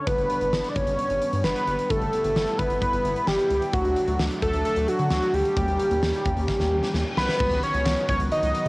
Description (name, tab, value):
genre	synth-pop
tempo	131 BPM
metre	4/4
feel	straight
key	unclear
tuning	A4 = 440 Hz
part	fat analog lead	melody	0.0-8.7 s	F#4 to D#5	-24 LUFS	equal	chorus, cassette tape, shimmer reverb
part	brassy analog pad	sustained chords	0.0-8.7 s	D#3 to G4	-32 LUFS	equal	chorus, shimmer reverb
part	rubbery square bass	bass	0.1-8.7 s	G1 to D3	-28 LUFS	equal	none
part	huge arena drum kit	drums	0.1-8.7 s	crash cymbal, handclaps, hi-hat, kick drum, snare drum	-29 LUFS	equal	cassette tape
part	reverse cymbal	sound effects	6.7-7.4 s	none	-37 LUFS	left 3 dB	none
room	moderate spring reverb, RT60 1.3 s, small room ambience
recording	home recording on cassette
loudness	-21 LUFS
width	side -24 dB against mid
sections	0.0-7.4 A section; 7.4-8.7 B section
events	drum fill 6.5-7.4; reverse cymbal 6.7-7.4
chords	0.1 G; 3.7 D; 5.6 D#7; 7.4 C#9sus4